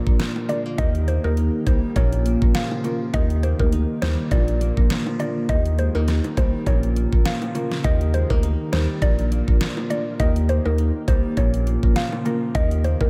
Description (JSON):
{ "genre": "dancehall", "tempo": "102 BPM", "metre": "4/4", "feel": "swing 56% on 16ths", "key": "Eb major", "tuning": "A4 = 440 Hz", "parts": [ { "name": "mallet-like synth pluck", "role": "melody", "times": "0.0-13.1 s", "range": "Bb4 to F5", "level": "-31 LUFS", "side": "equal", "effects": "chorus, phaser, analog delay" }, { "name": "ethereal airy pad", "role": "sustained chords", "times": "0.1-13.1 s", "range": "Db3 to G4", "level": "-34 LUFS", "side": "equal", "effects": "none" }, { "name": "nylon-string guitar", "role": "arpeggios", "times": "0.0-13.1 s", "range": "Bb2 to Eb4", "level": "-33 LUFS", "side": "equal", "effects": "analog delay" }, { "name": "marimba with medium mallets", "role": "accompaniment", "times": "0.1-13.1 s", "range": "Bb3 to Bb4", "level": "-31 LUFS", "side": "equal", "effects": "none" }, { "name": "saturated sub bass", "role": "bass", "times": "0.1-13.1 s", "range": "Bb1 to Eb2", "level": "-24 LUFS", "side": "equal", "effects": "none" }, { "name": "pop drum kit", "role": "drums", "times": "0.1-13.1 s", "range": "hi-hat, kick drum, rim click, snare drum", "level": "-24 LUFS", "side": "equal", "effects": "none" }, { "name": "bongos", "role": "percussion", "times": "0.4-13.1 s", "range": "none", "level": "-37 LUFS", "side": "equal", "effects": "none" } ], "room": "light reverb", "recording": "none", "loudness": "-21 LUFS", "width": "mono", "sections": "0.0-13.1 A section", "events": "none", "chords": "0.0 Bb; 0.8 Eb; 2.0 Bbm; 3.1 Eb; 4.3 Bb; 5.5 Eb; 6.7 Bbm; 7.8 Eb; 9.0 Bb; 10.2 Eb; 11.4 Bbm; 12.5 Eb" }